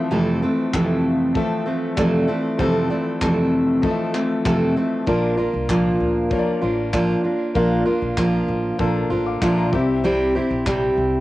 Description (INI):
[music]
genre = acoustic pop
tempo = 97 BPM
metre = 4/4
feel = straight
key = F major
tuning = A4 = 440 Hz
[part]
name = felt-muted upright piano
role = accompaniment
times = 0.0-11.2 s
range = F3 to D6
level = -28 LUFS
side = left 6 dB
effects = cassette tape
[part]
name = fingerpicked steel-string acoustic guitar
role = accompaniment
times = 0.0-11.2 s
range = F2 to A4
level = -19 LUFS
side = equal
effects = cassette tape
[part]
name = nylon-string guitar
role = arpeggios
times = 0.1-10.9 s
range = A4 to D5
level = -30 LUFS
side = right 2 dB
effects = cassette tape
[part]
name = modern studio drum kit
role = drums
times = 0.7-10.8 s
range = handclaps, kick drum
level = -28 LUFS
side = equal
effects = cassette tape
[part]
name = upright bass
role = bass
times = 5.1-11.2 s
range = A1 to D2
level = -28 LUFS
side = equal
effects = none
[sound]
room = moderate spring reverb, RT60 1.6 s, small room ambience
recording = home recording on cassette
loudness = -18 LUFS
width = side -16 dB against mid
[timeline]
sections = 0.0-11.2 A section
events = none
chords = 0.0 Fmaj7; 5.1 Bb; 9.7 C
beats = | 0.12 0.73 1.35 1.97 | 2.59 3.21 3.83 4.45 | 5.07 5.69 6.31 6.93 | 7.55 8.18 8.80 9.42 | 10.04 10.66